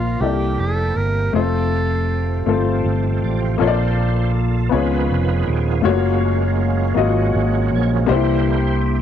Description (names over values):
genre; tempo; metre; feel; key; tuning
slow gospel; 53 BPM (dotted quarters); 6/8; straight; unclear; A4 = 440 Hz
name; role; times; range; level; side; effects
breathy tenor saxophone; melody; 0.0-2.8 s; F4 to Bb4; -24 LUFS; right 2 dB; cassette tape
clear upright piano; accompaniment; 0.0-9.0 s; Bb2 to Eb5; -20 LUFS; left 9 dB; cassette tape
overdriven tonewheel organ; sustained chords; 0.0-9.0 s; C3 to D5; -26 LUFS; right 10 dB; slow rotary speaker, chorus vibrato, cassette tape
fingered electric bass; bass; 0.0-9.0 s; Eb1 to Db2; -19 LUFS; right 2 dB; none
room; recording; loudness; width
light reverb; home recording on cassette; -16 LUFS; side -9 dB against mid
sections
0.0-3.6 A section; 3.6-9.0 B section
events
tonewheel organ solo 3.6-9.0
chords
0.2 C13; 1.3 F; 3.6 Bbmaj7; 4.7 Db7; 5.8 Gbmaj7; 8.1 C7